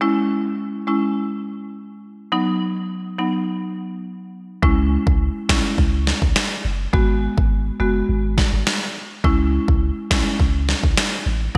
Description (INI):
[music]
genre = dancehall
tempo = 104 BPM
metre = 4/4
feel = straight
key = C# minor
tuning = A4 = 440 Hz
[part]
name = marimba with medium hard mallets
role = accompaniment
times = 0.0-11.6 s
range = F#3 to F#4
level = -25 LUFS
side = equal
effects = none
[part]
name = punchy sub bass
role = bass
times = 4.6-11.6 s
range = F#1 to C#2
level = -24 LUFS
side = equal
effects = none
[part]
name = deep house drum kit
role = drums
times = 4.6-11.6 s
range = finger snaps, kick drum, snare drum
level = -21 LUFS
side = equal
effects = gated reverb
[sound]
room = light reverb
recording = bright 1980s-style digital production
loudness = -20 LUFS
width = mono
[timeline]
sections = 0.0-11.6 A section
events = none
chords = 0.0 C#m; 2.3 B; 4.6 C#m; 6.9 G#m7; 9.2 C#m